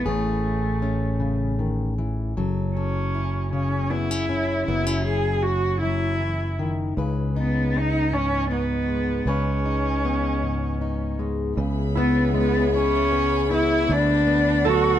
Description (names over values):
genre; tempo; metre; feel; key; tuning
acoustic folk-pop ballad; 52 BPM (dotted quarters); 6/8; straight; C# minor; A4 = 440 Hz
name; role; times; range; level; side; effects
dark cello; melody; 0.0-15.0 s; A3 to G#4; -24 LUFS; right 1 dB; none
fingerpicked plugged-in steel-string acoustic guitar; accompaniment; 0.0-15.0 s; G#2 to B4; -26 LUFS; left 4 dB; none
fingered electric bass; bass; 0.0-15.0 s; F#1 to D2; -25 LUFS; right 1 dB; none
dark studio string section; sustained chords; 11.6-15.0 s; G#4 to B5; -32 LUFS; right 2 dB; none
concert harp; arpeggios; 12.0-15.0 s; E4 to A4; -28 LUFS; right 10 dB; none
room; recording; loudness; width
little or no reverb; dark, warm production; -21 LUFS; side -11 dB against mid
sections
0.0-11.6 A section; 11.6-15.0 B section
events
none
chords
0.0 Amaj7; 2.4 F#m7; 7.0 C#sus2; 11.6 C#m7; 13.9 D6